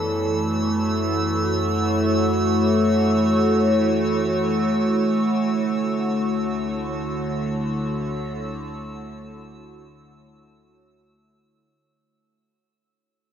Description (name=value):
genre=ambient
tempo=free time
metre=none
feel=none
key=unclear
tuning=A4 = 435 Hz
part: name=evolving wavetable pad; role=sustained chords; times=0.0-12.1 s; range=D3 to C#5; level=-22 LUFS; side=equal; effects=chorus, built-in reverb, phaser
part: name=round analog bass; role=bass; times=0.0-12.0 s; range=D2 to F#2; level=-31 LUFS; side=equal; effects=none
part: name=analog drone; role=drone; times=0.0-12.1 s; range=A3 to E4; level=-25 LUFS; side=equal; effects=chorus
part: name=drifting glass-harmonics texture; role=texture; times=0.0-12.1 s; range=E6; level=-32 LUFS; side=right 3 dB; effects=chorus, built-in reverb
room=wet huge ambient reverb, RT60 8.4 s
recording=none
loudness=-19 LUFS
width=side -8 dB against mid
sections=0.0-12.1 A section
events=fade-out on analog synth bass 0.0-12.1; fade-out 3.3-12.1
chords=0.0 F#m7; 5.5 Dmaj7